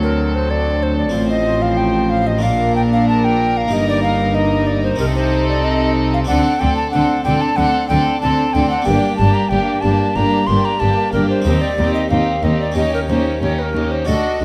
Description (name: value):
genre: classical, baroque-style concerto movement with solo episodes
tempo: 93 BPM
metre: 4/4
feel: straight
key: G minor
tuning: A4 = 441 Hz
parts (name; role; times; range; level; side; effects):
- alto recorder; melody; 0.0-14.4 s; Bb4 to C6; -22 LUFS; equal; none
- rich chamber violin section; melody; 0.0-14.4 s; G4 to C5; -29 LUFS; equal; none
- rich chamber violin section; second line; 0.0-14.4 s; C4 to F#4; -27 LUFS; equal; none
- dark chamber viola section; accompaniment; 0.0-14.4 s; F3 to D4; -26 LUFS; equal; none
- harpsichord; accompaniment; 0.0-14.4 s; D2 to A4; -26 LUFS; equal; none
- rich chamber cello section; bass; 0.0-14.4 s; D2 to D3; -24 LUFS; equal; none
- rich chamber double bass section; bass; 0.0-14.4 s; G1 to Eb2; -24 LUFS; equal; none
room: light reverb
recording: close, detailed microphones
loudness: -16 LUFS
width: mono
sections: 0.0-14.4 A section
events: none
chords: 0.0 D7; 1.1 F/A; 2.4 Bb; 3.7 Eb/G; 5.0 Adim/C; 6.3 D5; 8.9 Gm; 11.5 Cm/Eb; 12.8 Eb7